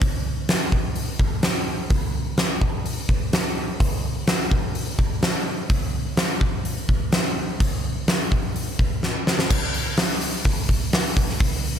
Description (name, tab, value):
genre	rock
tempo	126 BPM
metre	4/4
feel	straight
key	none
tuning	none
part	huge arena drum kit	drums	0.0-11.7 s	crash cymbal, hi-hat, kick drum, snare drum	-20 LUFS	equal	none
room	little or no reverb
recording	none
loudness	-20 LUFS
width	side -8 dB against mid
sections	0.0-9.5 A section; 9.5-11.8 B section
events	drum fill 9.0-9.5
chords	none